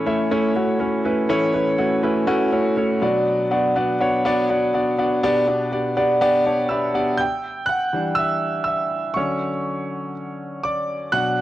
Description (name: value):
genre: pop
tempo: 122 BPM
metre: 4/4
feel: straight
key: unclear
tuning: A4 = 440 Hz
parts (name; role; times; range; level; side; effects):
- warm concert grand piano; solo; 0.0-11.4 s; A2 to G6; -18 LUFS; equal; cassette tape
room: moderate spring reverb, RT60 2.0 s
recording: home recording on cassette, nothing above 10.8 kHz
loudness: -18 LUFS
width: side -14 dB against mid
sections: 0.0-7.2 A section; 7.2-11.4 B section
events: grand piano fill 5.7-7.2; grand piano solo 7.2-11.4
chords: 0.0 A; 3.0 Bm; 5.2 G/B; 7.2 Em7; 9.2 Dmaj7